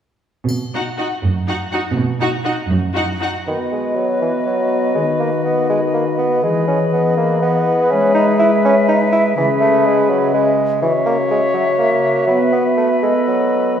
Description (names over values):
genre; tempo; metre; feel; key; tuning
cinematic, playful, whimsical film cue; 81 BPM (dotted quarters); 6/8; straight; B major; A4 = 439 Hz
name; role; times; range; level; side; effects
warm studio cello section; bass; 0.5-3.3 s; F#2 to B2; -20 LUFS; right 3 dB; none
triangle; percussion; 0.5-1.4 s; none; -37 LUFS; left 2 dB; none
warm studio violin section; second line; 0.7-3.3 s; F#4; -25 LUFS; left 2 dB; none
dark studio viola section; accompaniment; 0.7-3.3 s; D#4; -26 LUFS; right 1 dB; none
rich studio violin section; melody; 0.8-3.3 s; F#5; -27 LUFS; left 1 dB; none
dark cor anglais; second line; 3.5-13.8 s; B4 to C#5; -22 LUFS; right 1 dB; none
mellow hollow concert flute; second line; 3.5-13.8 s; D#5 to E5; -22 LUFS; left 1 dB; none
warm clarinet; second line; 3.5-13.8 s; F#4 to A4; -24 LUFS; left 1 dB; none
mellow bassoon; accompaniment; 3.5-13.8 s; D#3 to E4; -17 LUFS; equal; none
mellow French horn section; sustained chords; 3.5-13.8 s; C#3 to B3; -20 LUFS; left 2 dB; none
room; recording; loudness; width
wet scoring stage reverb, RT60 1.8 s; heard from further back in the room; -14 LUFS; side -8 dB against mid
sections
0.5-3.5 A section; 3.5-13.8 B section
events
none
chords
0.5 B; 3.5 B/D#; 6.4 Emaj7; 7.9 E/G#; 9.4 C#m7; 10.8 F#7/C#; 12.3 B5/F#; 13.0 B7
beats
| 0.48 1.23 | 1.96 2.70 | 3.47 4.22 | 4.96 5.70 | 6.43 7.17 | 7.91 8.64 | 9.37 10.10 | 10.82 11.55 | 12.28 13.03 | 13.79